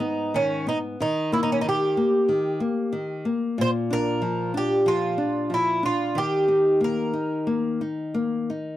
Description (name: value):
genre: fado-style ballad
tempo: 92 BPM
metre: 4/4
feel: rubato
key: unclear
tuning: A4 = 441 Hz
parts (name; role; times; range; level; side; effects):
- Irish bouzouki; melody; 0.0-8.5 s; C#4 to B#4; -23 LUFS; right 1 dB; none
- nylon-string guitar; accompaniment; 0.0-8.8 s; G#2 to D#4; -26 LUFS; left 2 dB; none
room: light reverb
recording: dry, close 1970s-style studio recording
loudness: -21 LUFS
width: side -13 dB against mid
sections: 0.0-8.8 A section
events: none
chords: 0.0 G#m; 1.0 D#; 3.6 A#; 6.2 D#5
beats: 0.34 | 0.99 1.65 2.29 2.94 | 3.58 4.22 4.86 5.51 | 6.16 6.82 7.48 8.16